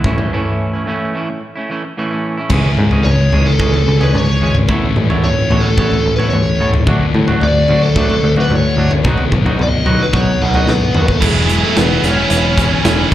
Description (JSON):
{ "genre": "quiet-loud alternative rock", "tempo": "110 BPM", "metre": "4/4", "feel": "straight", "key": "E major", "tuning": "A4 = 440 Hz", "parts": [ { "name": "twangy electric guitar", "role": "arpeggios", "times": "0.0-11.1 s", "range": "A2 to C#5", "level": "-21 LUFS", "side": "right 2 dB", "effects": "spring reverb, slapback echo" }, { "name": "picked electric bass", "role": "bass", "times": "0.0-13.1 s", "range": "E1 to A2", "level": "-16 LUFS", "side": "equal", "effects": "none" }, { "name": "big rock drum kit", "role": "drums", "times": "0.0-13.1 s", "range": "crash cymbal, hi-hat, kick drum, snare drum, toms", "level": "-17 LUFS", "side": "equal", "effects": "none" }, { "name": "thick fuzz guitar", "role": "riff", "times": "2.5-13.1 s", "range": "A2 to E4", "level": "-19 LUFS", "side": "left 6 dB", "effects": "distortion" }, { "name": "biting lead guitar", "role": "melody", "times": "3.0-13.1 s", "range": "G#3 to F#5", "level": "-18 LUFS", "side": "equal", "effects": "overdrive, slapback echo" }, { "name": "heavy high-gain guitar", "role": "riff", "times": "11.2-13.1 s", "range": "E3 to E4", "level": "-18 LUFS", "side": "right 11 dB", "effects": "distortion" } ], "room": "small room ambience", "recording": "live gig heard through the venue's PA, club reverb", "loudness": "-11 LUFS", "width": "side -13 dB against mid", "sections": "0.0-2.5 A section; 2.5-11.2 B section; 11.2-13.1 C section", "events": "break 0.3-2.5; drum fill 10.7-11.2", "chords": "0.0 A; 2.5 C#m; 4.7 Aadd9; 6.9 D; 9.1 B; 11.2 Esus2" }